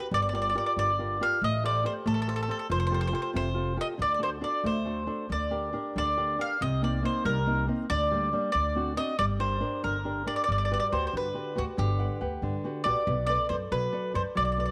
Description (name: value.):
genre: italian folk, Italian serenade.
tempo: 93 BPM (dotted quarters).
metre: 6/8.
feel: straight.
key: G minor, G major from 10.5 s.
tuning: A4 = 443 Hz.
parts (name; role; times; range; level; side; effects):
mandolin; melody; 0.0-14.7 s; F#4 to F5; -31 LUFS; equal; none.
flamenco guitar; accompaniment; 0.0-14.7 s; C3 to F#5; -35 LUFS; equal; none.
upright bass; bass; 0.1-14.6 s; F1 to B2; -34 LUFS; equal; transformer saturation.
room: light reverb, studio ambience.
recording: none.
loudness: -29 LUFS.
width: mono.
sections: 0.1-10.5 A section; 10.5-14.7 B section.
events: none.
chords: 0.1 Gm7; 1.4 Am7; 2.7 Fadd9; 4.0 D; 5.3 Gm/D; 6.6 Cm7; 7.9 Gm/D; 8.5 D7; 9.2 Gm; 10.5 Gmaj7; 13.1 Bm7.